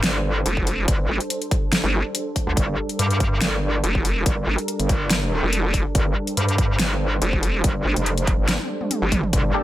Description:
heavy wobble dubstep; 142 BPM; 4/4; swing 54% on 16ths, half-time; G minor; A4 = 440 Hz
supersaw pad; sustained chords; 0.0-9.6 s; G3 to C5; -28 LUFS; right 2 dB; sidechain pumping, low-pass filter
metallic wobble bass; bass; 0.0-9.5 s; F1 to G2; -22 LUFS; equal; chorus, overdrive
dubstep drum kit; drums; 0.0-9.4 s; hi-hat, snare drum, toms; -24 LUFS; equal; overdrive
vowel-sweep wobble bass; bass; 0.5-9.2 s; F1 to G1; -21 LUFS; equal; chorus, overdrive
electronic kick drum; drums; 0.6-9.4 s; -23 LUFS; equal; overdrive
orchestra-hit-like synth stab; stabs; 9.5-9.6 s; Bb3 to A4; -20 LUFS; left 1 dB; built-in reverb, cassette tape
little or no reverb; -19 LUFS; side -14 dB against mid
0.0-9.6 A section
drum fill 8.5-9.3
0.0 Gmadd9

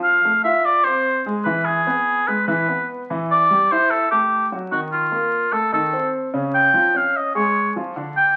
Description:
jazz; 148 BPM; 4/4; straight; A4 = 440 Hz
warm oboe; melody; 0.0-8.4 s; F4 to G5; -20 LUFS; equal
warm concert grand piano; accompaniment; 0.0-8.3 s; Db3 to F5; -26 LUFS; equal
wet large studio reverb, RT60 1.0 s; very old 78 rpm record, vinyl crackle; -19 LUFS; mono
0.0-8.4 A section
0.0 F; 1.5 E; 3.1 A5; 4.7 Ebsus2; 5.5 Adim/Eb; 6.3 Db

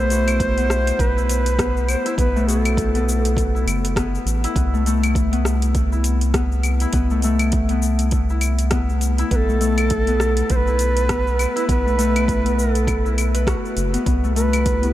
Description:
organic downtempo; 101 BPM; 4/4; swing 58% on 16ths; A4 = 440 Hz
bright Native American-style cedar flute; melody; 0.0-3.7, 9.3-14.9 s; A4 to C5; -24 LUFS; right 2 dB; tape echo
Celtic harp; arpeggios; 0.0-14.9 s; A3 to B4; -23 LUFS; left 4 dB; tape echo
round analog bass; bass; 0.0-14.9 s; F#1 to C2; -20 LUFS; equal; tube saturation
deep house drum kit; drums; 0.1-14.9 s; cabasa, claves, hi-hat, rim click; -28 LUFS; left 1 dB; overdrive
electronic kick drum; drums; 0.4-14.8 s; -24 LUFS; equal; overdrive
granular cloud pad; sustained chords; 14.7-14.9 s; E4 to G4; -31 LUFS; left 2 dB; built-in reverb, sidechain pumping
light reverb; -17 LUFS; side -14 dB against mid
0.0-14.9 A section
0.0 B7sus4; 4.6 Cmaj7; 9.3 B7sus4; 14.1 Cmaj7

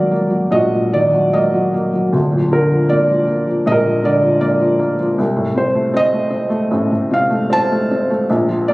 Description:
classical, lyrical solo piano; 72-81 BPM; 4/4; rubato; A4 = 438 Hz
felt-muted upright piano; solo; 0.0-8.7 s; D1 to A5; -13 LUFS; equal
light reverb; recorded on a phone in the room, studio reverb; -13 LUFS; side -20 dB against mid
0.0-8.7 A section
0.0 Ebm; 2.1 Bb/D; 5.2 Adim

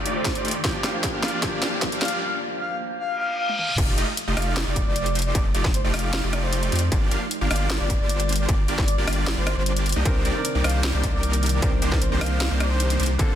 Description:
future bass; 153 BPM; 4/4; half-time; G minor; A4 = 439 Hz
clear grand piano; accompaniment; 0.0-3.6, 10.0-13.4 s; D3 to D5; -31 LUFS; equal; sidechain pumping, tape echo
ethereal airy pad; sustained chords; 0.0-13.4 s; F2 to D5; -34 LUFS; equal; ensemble chorus, built-in reverb, sidechain pumping
supersaw chords; riff; 0.0-13.4 s; A3 to F5; -28 LUFS; right 1 dB; cassette tape, sidechain pumping, low-pass filter
riser and reverse cymbal; sound effects; 0.4-3.8 s; -33 LUFS; left 1 dB
breathy flute-like synth lead; melody; 0.1-13.1 s; C5 to F5; -31 LUFS; left 1 dB; lush chorus, sidechain pumping, tape echo
trap drum kit; drums; 0.1-13.3 s; crash cymbal, hi-hat, rim click, snare drum, toms; -28 LUFS; equal; overdrive, studio reverb
electronic kick drum; drums; 0.3-13.3 s; -24 LUFS; equal; distortion, studio reverb
saturated sub bass; bass; 3.8-13.4 s; F1 to F2; -24 LUFS; equal; sidechain pumping
light reverb, digital ambience; dense, heavily limited modern master, high-pass filter; -20 LUFS; side -10 dB against mid
0.0-3.8 A section; 3.8-13.4 B section
build-up 0.0-3.8; drum fill 0.0-2.2, 3.5; filter sweep on soft synth lead 0.0-3.8; reverse cymbal 3.2-3.8; drop 3.8-13.4
0.0 F13; 0.6 Gm7; 3.6 N.C.; 3.8 F13; 6.9 Gm7; 9.9 Cm9

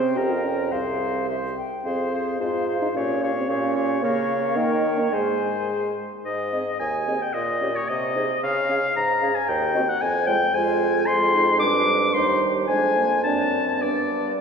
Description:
quick classical-period movement for wind quintet; 104-115 BPM; 2/4; rubato; F minor, Ab major from 4.0 s; A4 = 439 Hz
hollow concert flute; melody; 0.0-14.4 s; B4 to Ab5; -29 LUFS; left 2 dB
clear oboe; second line; 0.0-14.4 s; Bb4 to D6; -24 LUFS; left 2 dB
mellow French horn; accompaniment; 0.0-14.3 s; G3 to G4; -28 LUFS; right 1 dB
warm bassoon; bass; 0.0-14.4 s; C2 to Eb3; -27 LUFS; right 2 dB
mellow clarinet; accompaniment; 0.2-14.4 s; D4 to Bb4; -29 LUFS; right 4 dB
wet church reverb, RT60 2.5 s; minimal, uncompressed stereo recording; -20 LUFS; side -6 dB against mid
0.0-6.2 A section; 6.2-14.4 B section
0.2 Bbm6/F; 0.7 Fm/C; 1.3 C5; 1.9 Fm; 2.4 Fm/Ab; 3.0 Gm7b5/Bb; 4.0 Bbm/Db; 4.6 Eb7; 5.1 Ab; 7.3 Gdim/Bb; 7.9 Ab/C; 8.4 Db; 9.5 Cdim/Eb; 10.0 Db/F (rootless); 10.5 Fm; 11.6 G7/F; 12.1 Cm/Eb; 12.7 Dm7b5/F; 13.2 D7/F#; 13.8 G

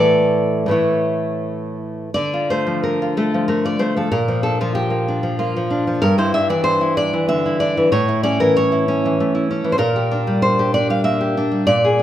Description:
romantic piece for solo classical guitar; 94 BPM; 3/4; uneven beats, rubato; D minor; A4 = 437 Hz
nylon-string guitar; solo; 0.0-12.0 s; G2 to F5; -16 LUFS; equal
moderate scoring stage reverb, RT60 1.6 s; minimal, uncompressed stereo recording; -16 LUFS; side -11 dB against mid
0.0-2.1 A section; 2.1-12.0 B section
0.0 A; 2.1 Dm; 4.1 Bb; 6.0 G5; 7.9 A; 9.8 Gm/Bb

